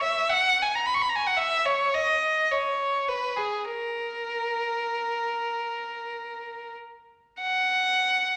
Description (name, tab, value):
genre	classical, free, expressive piece for unaccompanied violin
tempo	41-58 BPM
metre	3/4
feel	rubato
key	unclear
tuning	A4 = 441 Hz
part	rich violin	solo	0.0-8.4 s	G#4 to C#6	-26 LUFS	equal	none
room	wet recital hall reverb, RT60 1.5 s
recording	tube saturation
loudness	-26 LUFS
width	mono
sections	0.0-8.4 A section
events	none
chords	none